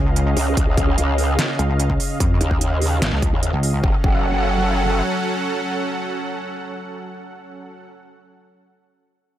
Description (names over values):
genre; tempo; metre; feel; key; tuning
heavy wobble dubstep; 147 BPM; 4/4; half-time; unclear; A4 = 441 Hz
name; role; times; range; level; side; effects
supersaw pad; sustained chords; 0.0-7.9 s; C#3 to F#5; -24 LUFS; right 2 dB; sidechain pumping, low-pass filter
pulsing pluck wobble bass; bass; 0.0-3.8 s; G#1 to E#2; -19 LUFS; equal; chorus, overdrive
dubstep drum kit; drums; 0.2-3.7 s; hi-hat, snare drum; -25 LUFS; right 1 dB; none
growl bass; bass; 0.4-5.0 s; F#1 to D#2; -20 LUFS; equal; chorus, overdrive
electronic kick drum; drums; 0.6-4.2 s; none; -20 LUFS; equal; overdrive
room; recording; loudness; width
little or no reverb; none; -17 LUFS; side -12 dB against mid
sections
0.0-3.8 A section; 3.8-7.1 B section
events
drop 0.0-3.8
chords
0.0 C#add9; 3.8 F#m